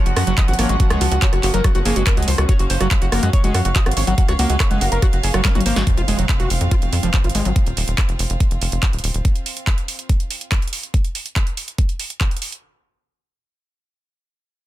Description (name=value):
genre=psychedelic trance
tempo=142 BPM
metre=4/4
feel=straight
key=F phrygian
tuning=A4 = 442 Hz
part: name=pulsing gated texture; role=sustained chords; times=0.0-5.9 s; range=F3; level=-31 LUFS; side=equal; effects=chorus, built-in reverb, sidechain pumping
part: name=rich chamber string section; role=texture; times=0.0-10.9 s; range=C4 to Gb5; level=-30 LUFS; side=right 1 dB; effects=sidechain pumping
part: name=overdriven synth lead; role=melody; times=0.1-5.8 s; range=Gb4 to Eb5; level=-25 LUFS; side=equal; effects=distortion, phaser, sidechain pumping, ping-pong delay
part: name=tight sequencer bass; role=bass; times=0.1-9.2 s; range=Eb1 to Gb2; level=-20 LUFS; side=equal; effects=none
part: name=techno drum kit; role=drums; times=0.1-12.6 s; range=handclaps, hi-hat, rim click, snare drum, toms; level=-24 LUFS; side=right 1 dB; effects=soft clipping on snare
part: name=overdriven acid bass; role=riff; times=0.3-7.5 s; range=F3 to Gb4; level=-25 LUFS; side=moving between left 5 dB and right 6 dB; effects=distortion, auto-pan, sidechain pumping, dub echo
part: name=electronic kick drum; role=drums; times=0.4-12.3 s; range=none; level=-17 LUFS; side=equal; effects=none
part: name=formant-sweep wobble bass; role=second line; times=0.5-5.6 s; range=Bb3 to C4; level=-35 LUFS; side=right 5 dB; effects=none
part: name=impact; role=sound effects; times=5.9-7.6 s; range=none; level=-29 LUFS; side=equal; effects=none
room=digital ambience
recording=dense, heavily limited modern master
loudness=-16 LUFS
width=side -14 dB against mid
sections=0.0-5.9 A section; 5.9-12.6 B section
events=drop 0.0-5.9; drum fill 5.4-5.9; fade-out on string section 5.9-10.9; impact 5.9-7.6; filter sweep on acid bass 5.9-7.6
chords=0.0 Gb5; 5.9 F5